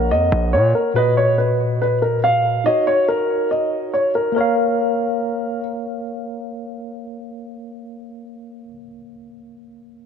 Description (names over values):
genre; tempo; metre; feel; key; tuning
hip hop, drill; 141 BPM; 4/4; half-time; Bb phrygian; A4 = 439 Hz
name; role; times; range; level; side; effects
dark concert grand piano; melody; 0.0-5.6 s; Bb4 to F5; -18 LUFS; equal; low-pass filter, digital delay
mellow tine electric piano; accompaniment; 0.0-10.1 s; Bb2 to Gb5; -23 LUFS; equal; medium stereo tremolo, low-pass filter
hard-hitting 808-style bass; bass; 0.0-0.7 s; Bb1 to Bb2; -18 LUFS; right 1 dB; none
room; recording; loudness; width
light reverb; none; -16 LUFS; side -7 dB against mid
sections
0.0-4.4 A section; 4.4-7.8 B section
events
none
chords
0.0 Gb/Bb; 1.0 B/Bb; 2.7 Ebm7; 4.4 Bbm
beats
0.11 0.53 | 0.96 1.39 1.81 2.24 | 2.66 3.09 3.51 3.94 | 4.36 4.79 5.21 5.64 | 6.07 6.49 6.92 7.34